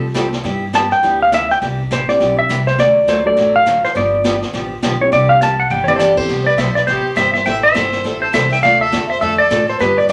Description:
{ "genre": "country, western swing", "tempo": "205 BPM", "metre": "4/4", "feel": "swing 61% on 8ths", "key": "C major", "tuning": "A4 = 440 Hz", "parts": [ { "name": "picked steel-string acoustic guitar", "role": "accompaniment", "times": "0.0-10.1 s", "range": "C3 to A4", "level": "-26 LUFS", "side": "equal", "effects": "none" }, { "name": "upright bass", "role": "bass", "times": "0.0-10.1 s", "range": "G1 to A2", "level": "-26 LUFS", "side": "equal", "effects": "none" }, { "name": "jazz brush drum kit", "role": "drums", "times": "0.1-10.1 s", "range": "brushed snare drum, crash cymbal, hi-hat, kick drum, snare drum, toms", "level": "-26 LUFS", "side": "equal", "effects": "none" }, { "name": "clean lap steel guitar", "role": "melody", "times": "0.8-10.1 s", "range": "B4 to A5", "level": "-16 LUFS", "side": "equal", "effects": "none" }, { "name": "dark upright piano", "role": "accompaniment", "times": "1.0-6.3 s", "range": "F#3 to A4", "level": "-27 LUFS", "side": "equal", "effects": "none" }, { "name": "clear fiddle", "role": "second line", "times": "5.8-10.1 s", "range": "G4 to E5", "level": "-25 LUFS", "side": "equal", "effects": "none" } ], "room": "wet club reverb, RT60 0.6 s", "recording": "none", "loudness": "-15 LUFS", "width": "mono", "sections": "0.0-6.3 A section; 6.3-10.1 B section", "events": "electric slide guitar solo 0.0-6.3; drum fill 5.7", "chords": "0.4 G6; 1.6 Cadd9; 2.8 D; 4.0 G7; 5.1 Cadd9; 6.3 Cmaj7; 7.5 Am7; 8.6 Dm", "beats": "0.15 | 0.44 0.73 1.03 1.32 | 1.61 1.90 2.20 2.49 | 2.78 3.08 3.37 3.66 | 3.95 4.25 4.54 4.83 | 5.12 5.41 5.71 6.00 | 6.29 6.58 6.87 7.17 | 7.46 7.75 8.04 8.34 | 8.63 8.92 9.21 9.51 | 9.80 10.09" }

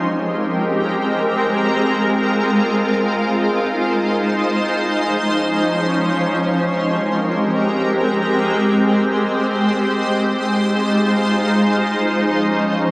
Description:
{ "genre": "hip hop", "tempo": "free time", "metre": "none", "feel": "none", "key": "Ab major", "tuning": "A4 = 438 Hz", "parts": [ { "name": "shimmering ambient pad", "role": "solo", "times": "0.0-12.9 s", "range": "F3 to C5", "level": "-18 LUFS", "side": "equal", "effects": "chorus, built-in reverb" } ], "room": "moderate echo chamber reverb, RT60 1.9 s", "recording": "dark, warm production", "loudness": "-18 LUFS", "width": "mono", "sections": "0.0-12.9 A section", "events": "none", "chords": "0.0 Abmaj9; 3.2 Fm7; 5.0 Dbmaj9; 6.7 Abmaj9; 10.2 Fm7; 12.0 Dbmaj9", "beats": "free time" }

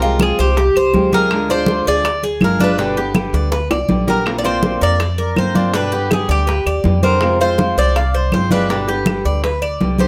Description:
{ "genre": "latin, Cuban son and guajira", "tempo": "162 BPM", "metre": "4/4", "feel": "straight", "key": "unclear", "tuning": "A4 = 440 Hz", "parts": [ { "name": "Cuban tres", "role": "melody", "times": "0.0-10.1 s", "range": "G4 to D5", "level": "-21 LUFS", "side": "equal", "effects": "none" }, { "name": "flamenco guitar", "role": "accompaniment", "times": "0.0-10.1 s", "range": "B2 to G4", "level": "-24 LUFS", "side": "equal", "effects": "none" }, { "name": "Cuban tres", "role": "arpeggios", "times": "0.0-10.1 s", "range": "D4 to F5", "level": "-24 LUFS", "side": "equal", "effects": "none" }, { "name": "upright bass", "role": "bass", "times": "0.0-10.1 s", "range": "G1 to G2", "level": "-23 LUFS", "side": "equal", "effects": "none" }, { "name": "bongos", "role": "percussion", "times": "0.0-10.1 s", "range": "none", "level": "-28 LUFS", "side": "equal", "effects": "none" }, { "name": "congas", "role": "percussion", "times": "0.0-10.1 s", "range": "none", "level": "-21 LUFS", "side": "equal", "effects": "none" }, { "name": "claves", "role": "percussion", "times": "0.2-9.8 s", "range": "none", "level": "-30 LUFS", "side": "equal", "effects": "none" } ], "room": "light reverb", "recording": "close, detailed microphones", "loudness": "-16 LUFS", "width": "mono", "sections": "0.0-10.1 A section", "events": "drum fill 3.3-4.3", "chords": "0.0 Fmadd9/C; 1.3 Ddim; 2.8 G; 4.3 Bbadd9; 5.7 G; 7.2 Fm; 8.7 G", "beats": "0.20 0.57 0.94 | 1.31 1.68 2.05 2.42 | 2.79 3.16 3.53 3.90 | 4.27 4.64 5.00 5.38 | 5.74 6.11 6.48 6.85 | 7.22 7.59 7.96 8.33 | 8.70 9.07 9.44 9.81" }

